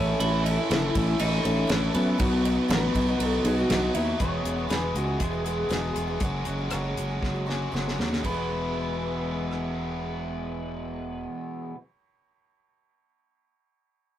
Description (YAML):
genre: folk rock and heartland rock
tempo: 119 BPM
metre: 4/4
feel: straight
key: E major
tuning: A4 = 442 Hz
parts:
  - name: twelve-string electric guitar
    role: melody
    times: 0.0-3.9 s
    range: B3 to E4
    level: -28 LUFS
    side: left 1 dB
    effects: none
  - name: dark upright piano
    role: accompaniment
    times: 0.0-4.1 s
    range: B3 to C#5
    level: -32 LUFS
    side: right 1 dB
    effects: none
  - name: picked twelve-string acoustic guitar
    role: accompaniment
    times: 0.0-11.8 s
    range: E2 to F#4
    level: -35 LUFS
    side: left 2 dB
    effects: none
  - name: biting overdriven guitar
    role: riff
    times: 0.0-11.8 s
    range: E2 to G#4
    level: -32 LUFS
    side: equal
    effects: none
  - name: fingered electric bass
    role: bass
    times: 0.0-11.2 s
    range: E1 to F#2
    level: -29 LUFS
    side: equal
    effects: none
  - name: damped 70s drum kit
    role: drums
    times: 0.2-9.6 s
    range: hi-hat, kick drum, ride cymbal, rim click, snare drum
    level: -29 LUFS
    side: equal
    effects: none
  - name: electric slide guitar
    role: second line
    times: 2.7-11.3 s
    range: E4 to C#5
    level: -33 LUFS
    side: equal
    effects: none
room: moderate booth ambience, RT60 0.3 s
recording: rough rehearsal-room recording, warm saturation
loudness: -24 LUFS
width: side -11 dB against mid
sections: 0.0-4.2 A section; 4.2-8.2 B section; 8.2-12.3 C section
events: drum fill 7.2-8.2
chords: 0.0 A; 2.2 B; 4.2 Eadd9; 6.2 F#sus2; 8.2 Eadd9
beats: | 0.20 0.70 1.20 1.70 | 2.20 2.69 3.19 3.69 | 4.20 4.70 5.20 5.71 | 6.21 6.72 7.22 7.73 | 8.24 8.75 9.26 9.77 | 10.28 10.79 11.30 11.81